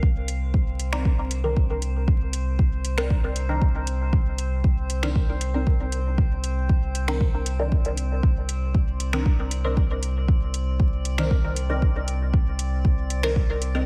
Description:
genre	dub techno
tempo	117 BPM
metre	4/4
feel	straight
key	C minor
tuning	A4 = 438 Hz
part	soft dub sub bass	bass	0.0-13.9 s	C2	-28 LUFS	equal	sidechain pumping
part	electronic kick drum	drums	0.0-13.5 s	none	-24 LUFS	equal	studio ambience
part	drifting glass-harmonics texture	texture	0.0-13.9 s	C4 to D5	-39 LUFS	equal	chorus, built-in reverb, sidechain pumping
part	soft vintage rhythm box	drums	0.3-13.7 s	finger snaps, hi-hat	-35 LUFS	equal	studio ambience
part	filtered dub chord stab	stabs	0.9-13.9 s	Eb3 to Bb4	-32 LUFS	equal	phaser, sidechain pumping, dub echo
room	digital ambience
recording	vinyl crackle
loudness	-24 LUFS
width	mono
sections	0.0-13.9 A section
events	none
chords	0.0 Cm9

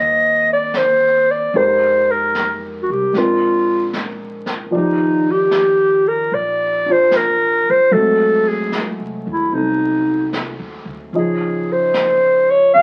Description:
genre	jazz ballad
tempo	75 BPM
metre	4/4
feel	swing 69% on 8ths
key	unclear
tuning	A4 = 440 Hz
part	warm clarinet	melody	0.0-12.8 s	Eb4 to F5	-16 LUFS	equal	none
part	dark concert grand piano	accompaniment	0.0-12.8 s	F3 to Eb5	-25 LUFS	equal	none
part	upright bass	bass	0.0-12.8 s	Ab1 to F2	-37 LUFS	equal	none
part	jazz brush drum kit	drums	0.7-12.8 s	brushed snare drum, hi-hat, snare drum	-32 LUFS	equal	none
room	moderate studio reverb, RT60 0.5 s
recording	very old 78 rpm record, vinyl crackle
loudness	-16 LUFS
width	mono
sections	0.0-12.8 A section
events	none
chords	0.0 Cm7; 1.5 Fm11; 3.1 Bb9; 4.7 Ebmaj9; 7.9 Ab7b9; 11.1 Dbmaj9

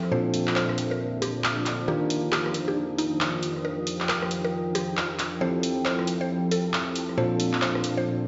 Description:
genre	UK garage, two-step garage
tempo	136 BPM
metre	4/4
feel	swing 62% on 16ths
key	Eb lydian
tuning	A4 = 443 Hz
part	soft string machine	sustained chords	0.0-8.3 s	Bb2 to C5	-37 LUFS	equal	phaser, ensemble chorus
part	bell-like tine electric piano	stabs	0.0-8.3 s	Bb2 to Bb4	-31 LUFS	equal	low-pass filter, digital delay
part	punchy analog drum machine	drums	0.0-7.9 s	handclaps, hi-hat, rim click	-31 LUFS	equal	none
part	deep dark ambient pad	texture	0.0-8.3 s	F3 to Eb6	-35 LUFS	equal	chorus, built-in reverb
part	mallet-like synth pluck	melody	0.1-8.2 s	Eb4 to C5	-35 LUFS	equal	chorus, tape echo
room	wet lush hall reverb, RT60 1.8 s, digital ambience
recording	played on a big sound system in a bare room, stone room reverb, nothing above 7.7 kHz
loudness	-26 LUFS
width	mono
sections	0.0-8.3 A section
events	filter sweep on string machine 0.0-8.3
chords	0.1 Bbmaj9; 1.9 Ebmaj9; 5.4 Fmaj9; 7.2 Bbmaj9

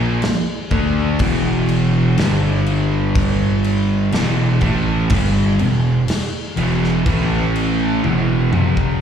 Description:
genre	stoner and doom metal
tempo	62 BPM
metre	4/4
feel	straight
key	E minor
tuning	A4 = 444 Hz
part	distorted electric guitar	riff	0.0-9.0 s	E2 to D4	-23 LUFS	right 1 dB	distortion, slapback echo
part	thick fuzz guitar	riff	0.0-9.0 s	E2 to D4	-21 LUFS	left 6 dB	distortion
part	thick fuzz guitar	riff	0.0-9.0 s	E2 to D4	-21 LUFS	right 7 dB	distortion, slapback echo
part	fuzz picked electric bass	bass	0.0-9.0 s	E1 to D2	-21 LUFS	equal	overdrive
part	big rock drum kit	drums	0.2-9.0 s	crash cymbal, kick drum, snare drum, toms	-23 LUFS	equal	none
room	studio reverb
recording	live gig heard through the venue's PA, club reverb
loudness	-15 LUFS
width	side -8 dB against mid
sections	0.0-9.0 A section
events	drum fill 8.0-9.0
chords	0.0 E5; 2.2 G5; 4.1 Em; 7.1 A5; 8.0 E5

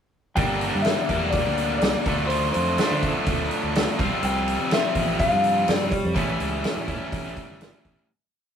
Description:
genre	indie rock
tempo	124 BPM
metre	4/4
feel	straight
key	unclear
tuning	A4 = 442 Hz
part	electric guitar through a small old amp	melody	0.4-7.6 s	C5 to G5	-26 LUFS	left 3 dB	none
part	overdriven electric guitar	riff	0.4-8.1 s	G2 to F4	-28 LUFS	left 2 dB	none
part	overdriven electric guitar	riff	0.4-8.1 s	G2 to G4	-28 LUFS	right 3 dB	none
part	fingered electric bass	bass	0.4-8.0 s	E1 to D3	-28 LUFS	equal	none
part	loose indie drum kit	drums	0.4-8.0 s	hi-hat, kick drum, snare drum	-26 LUFS	right 1 dB	none
room	light reverb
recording	rough rehearsal-room recording, tube saturation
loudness	-21 LUFS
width	side -8 dB against mid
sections	0.4-8.1 pre-chorus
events	fade-out 6.2-8.1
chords	0.4 Gm; 2.1 Dm7; 4.0 Csus4; 6.2 A7

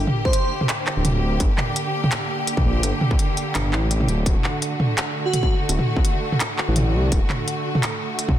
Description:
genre	half-time drum and bass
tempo	168 BPM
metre	4/4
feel	swing 55% on 16ths, half-time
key	G harmonic minor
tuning	A4 = 440 Hz
part	clear symphonic string section	sustained chords	0.0-8.4 s	D3 to G4	-26 LUFS	right 1 dB	sidechain pumping
part	dark detuned saw bass	bass	0.0-7.2 s	D1 to C2	-21 LUFS	equal	none
part	industrial drum kit	drums	0.1-8.3 s	handclaps, hi-hat, toms	-23 LUFS	right 1 dB	soft clipping on snare
part	airy dreamy lead	melody	0.3-0.5, 5.3-5.5 s	F#4 to C5	-28 LUFS	right 1 dB	chorus, ping-pong delay
part	electronic kick drum	drums	0.3-8.4 s	none	-20 LUFS	equal	distortion
room	light reverb, digital ambience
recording	dense, heavily limited modern master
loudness	-19 LUFS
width	side -12 dB against mid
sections	0.0-8.4 A section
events	none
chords	0.0 Gm; 4.3 D

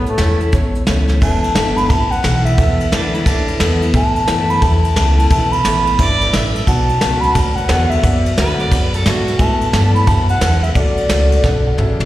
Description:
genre	honky-tonk and classic country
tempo	176 BPM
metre	4/4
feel	swing 65% on 8ths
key	unclear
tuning	A4 = 439 Hz
part	bright alto flute	melody	0.0-11.7 s	A3 to B5	-19 LUFS	equal	slapback echo
part	dark concert grand piano	accompaniment	0.0-12.0 s	E4 to G5	-26 LUFS	right 4 dB	slapback echo
part	picked steel-string acoustic guitar	accompaniment	0.0-12.1 s	E2 to F#4	-22 LUFS	left 3 dB	slapback echo
part	upright bass	bass	0.0-12.1 s	E1 to A2	-16 LUFS	equal	none
part	soft brush drum kit	drums	0.1-12.1 s	crash cymbal, hi-hat, kick drum, ride cymbal, snare drum, toms	-18 LUFS	equal	none
part	clear fiddle	second line	2.9-3.9, 6.0-9.3 s	B3 to E5	-22 LUFS	right 2 dB	slapback echo
room	light reverb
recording	live gig heard through the venue's PA, recital hall reverb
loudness	-12 LUFS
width	side -15 dB against mid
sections	0.0-1.2 A section; 1.2-12.1 B section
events	alto flute solo 0.0-1.2; drum fill 1.0, 11.4-12.1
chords	0.0 A; 1.2 Esus4; 6.7 Bm; 9.4 Asus2; 10.8 D

